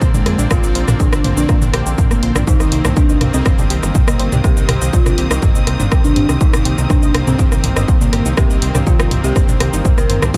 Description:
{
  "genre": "melodic techno",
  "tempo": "122 BPM",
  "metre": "4/4",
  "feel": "straight",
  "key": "C minor",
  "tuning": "A4 = 440 Hz",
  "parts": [
    { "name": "bright symphonic string section", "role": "sustained chords", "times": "0.0-10.4 s", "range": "C4 to Eb6", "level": "-33 LUFS", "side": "equal", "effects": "sidechain pumping" },
    { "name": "unison pluck", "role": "arpeggios", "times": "0.0-10.4 s", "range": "Bb3 to Eb6", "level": "-31 LUFS", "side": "equal", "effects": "sidechain pumping, tape echo" },
    { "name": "brassy analog pad", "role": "stabs", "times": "0.0-10.4 s", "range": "D3 to C4", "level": "-25 LUFS", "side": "equal", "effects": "chorus, sidechain pumping, tape echo" },
    { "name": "plucky analog bass", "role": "bass", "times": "0.0-10.4 s", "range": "G1 to Bb2", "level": "-21 LUFS", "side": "equal", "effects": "sidechain pumping" },
    { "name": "electronic kick drum", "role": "drums", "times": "0.0-10.4 s", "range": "none", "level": "-16 LUFS", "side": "equal", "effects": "studio reverb" },
    { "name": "punchy analog drum machine", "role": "drums", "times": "0.0-10.4 s", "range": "hi-hat, ride cymbal, rim click, shaker, toms", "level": "-23 LUFS", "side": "equal", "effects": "overdrive, sidechain pumping on toms, studio reverb, sidechain pumping on perc, sidechain pumping on hats, sidechain pumping on cymbals" },
    { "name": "soft octave-layered synth lead", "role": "melody", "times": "0.1-10.4 s", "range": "Ab3 to Bb4", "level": "-25 LUFS", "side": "equal", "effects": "chorus, phaser, cassette tape, sidechain pumping, dub echo" },
    { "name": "dark detuned synth bell", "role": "second line", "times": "0.5-10.4 s", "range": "C4 to Bb4", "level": "-30 LUFS", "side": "equal", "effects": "none" }
  ],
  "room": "digital ambience",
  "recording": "dark, warm production",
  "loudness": "-14 LUFS",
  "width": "mono",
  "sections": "0.0-10.4 A section",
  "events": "none",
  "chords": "0.0 Bbadd9; 2.5 Cm7"
}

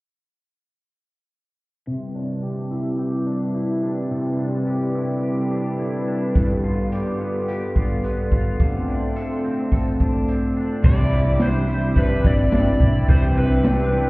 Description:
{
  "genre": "dream pop",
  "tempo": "107 BPM",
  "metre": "4/4",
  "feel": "straight",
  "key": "C major",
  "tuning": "A4 = 439 Hz",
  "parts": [
    { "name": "warm analog pad", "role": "sustained chords", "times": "1.9-14.1 s", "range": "D3 to D6", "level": "-24 LUFS", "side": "equal", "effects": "chorus, low-pass filter" },
    { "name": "electric guitar at the edge of break-up", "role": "arpeggios", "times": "1.9-14.1 s", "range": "G2 to B4", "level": "-26 LUFS", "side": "left 1 dB", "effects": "analog chorus, low-pass filter, tape echo" },
    { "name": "raw garage drum kit", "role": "drums", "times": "6.4-14.1 s", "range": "crash cymbal, hi-hat, kick drum, snare drum, tambourine", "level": "-20 LUFS", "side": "equal", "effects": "none" },
    { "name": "overdriven semi-hollow guitar", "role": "accompaniment", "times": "10.8-14.1 s", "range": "C3 to B4", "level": "-26 LUFS", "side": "right 2 dB", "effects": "harmonic tremolo, ensemble chorus" },
    { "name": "vintage muted fingered electric bass", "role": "bass", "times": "10.8-14.1 s", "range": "G1 to C2", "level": "-21 LUFS", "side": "equal", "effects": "none" },
    { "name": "overdriven slide guitar", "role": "melody", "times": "10.9-14.1 s", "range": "B4 to D5", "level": "-25 LUFS", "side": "equal", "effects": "tape echo" }
  ],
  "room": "moderate lush hall reverb, RT60 2.8 s",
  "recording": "heard muffled through a wall, stone room reverb, EQ",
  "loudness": "-18 LUFS",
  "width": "side -22 dB against mid",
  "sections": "1.9-10.8 A section; 10.8-14.1 B section",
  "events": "filter sweep 1.9-10.8",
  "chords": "1.9 Cmaj9; 6.4 G7; 8.6 Dm7; 10.8 Cmaj9"
}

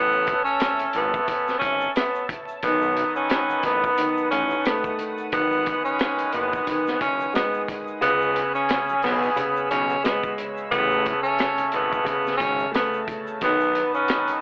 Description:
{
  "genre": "hip hop, boom-bap hip-hop",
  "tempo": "89 BPM",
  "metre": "4/4",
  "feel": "swing 56% on 16ths",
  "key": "unclear",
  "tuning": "A4 = 440 Hz",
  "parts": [
    { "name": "breathy tenor saxophone", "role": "melody", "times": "0.0-14.4 s", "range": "B3 to C#4", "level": "-22 LUFS", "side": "equal", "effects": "high-pass filter, low-pass filter" },
    { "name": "warm analog pad", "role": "sustained chords", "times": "0.0-14.4 s", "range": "B4 to E6", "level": "-34 LUFS", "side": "equal", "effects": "none" },
    { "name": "muted trumpet section", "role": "stabs", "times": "0.0-14.4 s", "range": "F#3 to B4", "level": "-28 LUFS", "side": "equal", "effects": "high-pass filter, low-pass filter" },
    { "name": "fat analog bass", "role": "bass", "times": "0.0-14.3 s", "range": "F#1 to C#2", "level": "-29 LUFS", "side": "equal", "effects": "transformer saturation" },
    { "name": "egg shaker", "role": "percussion", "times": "0.1-14.4 s", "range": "none", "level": "-55 LUFS", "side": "equal", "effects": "none" },
    { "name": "crunchy breakbeat drum kit", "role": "drums", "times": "0.3-14.4 s", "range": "hi-hat, kick drum, rim click, snare drum", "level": "-28 LUFS", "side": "equal", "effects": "none" },
    { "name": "dark upright piano", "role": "accompaniment", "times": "2.6-14.4 s", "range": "C#3 to A3", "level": "-30 LUFS", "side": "equal", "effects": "cassette tape, high-pass filter, low-pass filter" }
  ],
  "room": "little or no reverb",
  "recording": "dry, gritty hardware recording, vinyl crackle, telephone sound",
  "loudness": "-20 LUFS",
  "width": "side -30 dB against mid",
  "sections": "0.0-14.4 A section",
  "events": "break 0.0-2.6; kick muted 8.0-9.4",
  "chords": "0.0 A; 2.6 B7; 5.3 G#m7; 8.0 C#m7; 10.7 A; 13.4 B7"
}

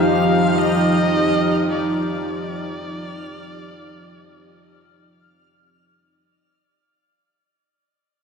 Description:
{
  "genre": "ambient",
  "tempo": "free time",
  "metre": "none",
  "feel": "none",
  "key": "unclear",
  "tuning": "A4 = 441 Hz",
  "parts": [
    { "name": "dark electric violin", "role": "melody", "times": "0.0-5.1 s", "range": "D5 to F5", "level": "-24 LUFS", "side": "left 1 dB", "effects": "ping-pong delay" },
    { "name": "warm analog pad", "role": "sustained chords", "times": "0.0-6.2 s", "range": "F3 to G4", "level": "-19 LUFS", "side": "right 1 dB", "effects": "chorus" },
    { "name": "backwards swelling texture", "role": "texture", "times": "0.0-6.3 s", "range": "F6", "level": "-32 LUFS", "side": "equal", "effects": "built-in reverb" }
  ],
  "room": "wet lush hall reverb, RT60 2.8 s",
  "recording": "dark, warm production",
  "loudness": "-17 LUFS",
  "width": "side -5 dB against mid",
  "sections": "0.0-6.2 A section",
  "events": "fade-out 0.0-6.2",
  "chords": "0.0 Cmadd9/F"
}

